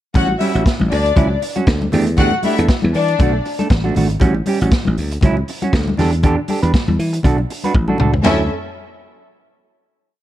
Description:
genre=disco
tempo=119 BPM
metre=4/4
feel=swing 56% on 16ths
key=D major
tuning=A4 = 438 Hz
part: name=congas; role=percussion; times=0.1-8.5 s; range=none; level=-24 LUFS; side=left 4 dB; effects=none
part: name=rich studio string section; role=second line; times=0.2-3.4, 8.2-8.5 s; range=C#4 to F#5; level=-20 LUFS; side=left 5 dB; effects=none
part: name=semi-hollow electric guitar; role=accompaniment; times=0.2-8.4 s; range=F#3 to B4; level=-21 LUFS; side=right 4 dB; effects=none
part: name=dry thumbed slap bass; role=bass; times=0.2-8.5 s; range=G#1 to E3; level=-17 LUFS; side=equal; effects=none
part: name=vintage drum kit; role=drums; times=0.2-8.4 s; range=hi-hat, kick drum, ride cymbal, snare drum, toms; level=-18 LUFS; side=equal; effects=none
room=small room ambience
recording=dark, warm production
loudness=-14 LUFS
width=side -13 dB against mid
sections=0.2-8.2 pre-chorus; 8.2-10.2 final chord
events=drum fill 7.7-8.2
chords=0.2 A6; 0.9 Dmaj9; 1.9 Em11; 3.2 Bm7; 4.2 A6; 5.0 Dmaj9; 6.0 Em7; 7.2 Bm7; 8.2 Dmaj9

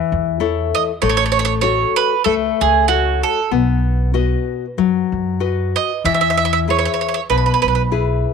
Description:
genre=italian folk, Italian serenade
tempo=96 BPM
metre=4/4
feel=swing 55% on 8ths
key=E major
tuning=A4 = 440 Hz
part: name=nylon-string guitar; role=accompaniment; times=0.0-8.3 s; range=B2 to D#5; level=-19 LUFS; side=left 12 dB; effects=none
part: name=upright bass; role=bass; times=0.1-8.2 s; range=A1 to F#2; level=-21 LUFS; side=right 1 dB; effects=none
part: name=bowl-back mandolin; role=melody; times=0.7-7.8 s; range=F#4 to E5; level=-17 LUFS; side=right 11 dB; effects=none
room=light reverb, studio reverb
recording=1960s-style stereo with parts hard left and right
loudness=-15 LUFS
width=side -6 dB against mid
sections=0.0-8.3 A section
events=none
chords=0.0 A; 1.0 F#m/A; 3.5 B; 6.0 E

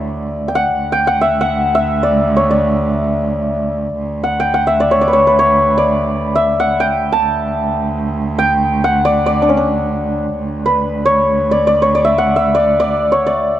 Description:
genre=Persian modal ensemble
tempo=free time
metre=none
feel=none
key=D dastgah mahur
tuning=A4 = 440 Hz
part: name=santur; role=melody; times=0.0-13.6 s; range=C#4 to A5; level=-13 LUFS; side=left 1 dB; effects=none
part: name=warm cello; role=drone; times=0.0-13.6 s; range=D2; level=-19 LUFS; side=right 2 dB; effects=none
room=moderate booth ambience, RT60 0.2 s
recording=dry, close 1970s-style studio recording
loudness=-12 LUFS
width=side -12 dB against mid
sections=0.0-10.4 A section; 10.4-13.6 A section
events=none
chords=none

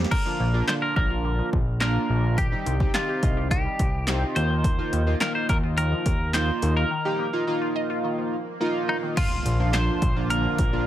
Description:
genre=dance-pop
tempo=106 BPM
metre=4/4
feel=straight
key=Bb major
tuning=A4 = 440 Hz
part: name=chorused polysynth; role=accompaniment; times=0.0-10.9 s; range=F3 to G4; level=-28 LUFS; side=right 1 dB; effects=sidechain pumping
part: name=glassy wavetable pluck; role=arpeggios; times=0.0-9.2 s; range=D3 to Eb5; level=-35 LUFS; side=left 3 dB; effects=chorus, sidechain pumping, digital delay
part: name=fat analog bass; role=bass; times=0.0-10.9 s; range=Bb1 to Eb2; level=-24 LUFS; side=equal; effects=sidechain pumping
part: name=punchy analog drum machine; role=drums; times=0.0-10.7 s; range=crash cymbal, handclaps, hi-hat, kick drum, snare drum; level=-26 LUFS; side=equal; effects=none
part: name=twelve-string electric guitar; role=melody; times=0.1-10.9 s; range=Eb4 to C5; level=-28 LUFS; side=equal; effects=none
part: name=swell and impact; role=sound effects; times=8.1-10.9 s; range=none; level=-36 LUFS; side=equal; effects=none
part: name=lush unison pad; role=sustained chords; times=9.2-10.9 s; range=D3 to F4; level=-33 LUFS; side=equal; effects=chorus, phaser, sidechain pumping
room=little or no reverb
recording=none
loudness=-22 LUFS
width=side -12 dB against mid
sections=0.1-9.2 A section; 9.2-10.9 B section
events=break 6.9-9.2; swell 8.1-9.2; impact 9.2-10.9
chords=0.1 Bb; 2.4 Cm; 4.4 Ebsus2; 9.2 Bb

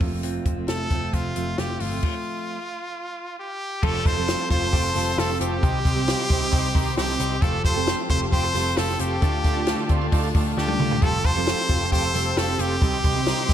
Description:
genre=jangly indie pop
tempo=134 BPM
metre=4/4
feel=straight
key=F mixolydian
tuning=A4 = 440 Hz
part: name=fingerpicked steel-string acoustic guitar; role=accompaniment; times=0.0-13.5 s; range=F2 to A4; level=-31 LUFS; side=right 9 dB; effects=none
part: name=direct-recorded clean electric guitar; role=arpeggios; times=0.0-13.5 s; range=F2 to A4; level=-30 LUFS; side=left 5 dB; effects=wide subtle chorus
part: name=vintage muted picked electric bass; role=bass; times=0.0-13.5 s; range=F1 to D2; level=-28 LUFS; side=equal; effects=none
part: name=compact cocktail drum kit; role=drums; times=0.0-13.5 s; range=crash cymbal, hi-hat, kick drum, snare drum, toms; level=-24 LUFS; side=equal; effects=none
part: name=brilliant trumpet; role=melody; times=0.7-13.5 s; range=F4 to C5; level=-26 LUFS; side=equal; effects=none
part: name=combo organ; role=accompaniment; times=3.8-13.5 s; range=G3 to C5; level=-31 LUFS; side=right 6 dB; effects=slapback echo
part: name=warm studio string section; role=sustained chords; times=3.8-13.5 s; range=F4 to C6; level=-36 LUFS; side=left 2 dB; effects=none
room=moderate recital hall reverb, RT60 1.5 s, small room ambience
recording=big arena sound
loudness=-20 LUFS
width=side -10 dB against mid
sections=0.0-3.8 A section; 3.8-13.5 B section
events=stop 2.0-3.8; drum fill 10.6-11.0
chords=0.0 F; 3.8 Fadd9; 5.6 Cm; 7.4 Fadd9; 9.2 Dm; 11.0 Fadd9; 12.8 Cm

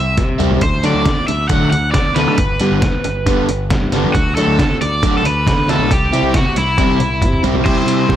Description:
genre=indie rock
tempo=136 BPM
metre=4/4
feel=straight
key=D mixolydian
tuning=A4 = 440 Hz
part: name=cranked stack guitar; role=melody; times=0.0-8.2 s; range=E4 to F#5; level=-19 LUFS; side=equal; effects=overdrive, slapback echo
part: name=growling fingered electric bass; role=bass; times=0.0-8.2 s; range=G1 to D3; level=-19 LUFS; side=equal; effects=overdrive
part: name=crunchy overdriven guitar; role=riff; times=0.2-8.2 s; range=C3 to E4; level=-18 LUFS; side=equal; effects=none
part: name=trip hop sampler-style drum kit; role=drums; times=0.2-8.2 s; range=crash cymbal, hi-hat, kick drum, snare drum, toms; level=-18 LUFS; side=equal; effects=overdrive
room=light reverb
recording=none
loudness=-13 LUFS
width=side -11 dB against mid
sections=0.0-7.7 A section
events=drum fill 0.2-0.6, 6.8-7.7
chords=0.0 C; 0.6 D; 2.4 G; 4.1 D; 5.9 C

